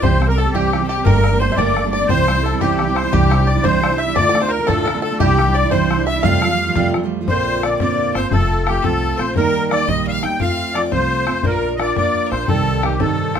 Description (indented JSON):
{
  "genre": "celtic folk, Celtic jig",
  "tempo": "116 BPM (dotted quarters)",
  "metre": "6/8",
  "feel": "straight",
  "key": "Bb major from 7.3 s",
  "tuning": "A4 = 440 Hz",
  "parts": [
    { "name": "musette accordion", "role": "melody", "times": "0.0-13.4 s", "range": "G4 to G5", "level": "-20 LUFS", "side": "left 2 dB", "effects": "none" },
    { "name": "bluegrass banjo", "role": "second line", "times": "0.0-6.9 s", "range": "G4 to F5", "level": "-27 LUFS", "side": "right 4 dB", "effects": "none" },
    { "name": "bright fiddle", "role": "second line", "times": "0.0-13.4 s", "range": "G4 to G5", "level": "-25 LUFS", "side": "left 7 dB", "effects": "none" },
    { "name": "fingerpicked steel-string acoustic guitar", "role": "accompaniment", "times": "0.0-13.4 s", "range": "D2 to Bb4", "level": "-20 LUFS", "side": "right 6 dB", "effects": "none" },
    { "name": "upright bass", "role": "bass", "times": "0.0-13.4 s", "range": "F1 to G2", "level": "-21 LUFS", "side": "equal", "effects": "none" },
    { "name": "bodhran", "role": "percussion", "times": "0.0-13.4 s", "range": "none", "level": "-22 LUFS", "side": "left 4 dB", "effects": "none" }
  ],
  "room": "moderate small room reverb, RT60 0.5 s",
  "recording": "minimal, uncompressed stereo recording",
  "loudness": "-14 LUFS",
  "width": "side -8 dB against mid",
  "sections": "0.0-7.3 A section; 7.3-13.4 B section",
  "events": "none",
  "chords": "0.0 C; 1.1 Gmadd9; 2.1 C; 3.1 Cadd9; 4.2 Dm; 5.2 Cadd9; 6.2 Fadd9; 7.3 Bbadd9; 8.3 F; 9.4 Eb; 10.4 F; 11.4 Bb; 12.5 Cm"
}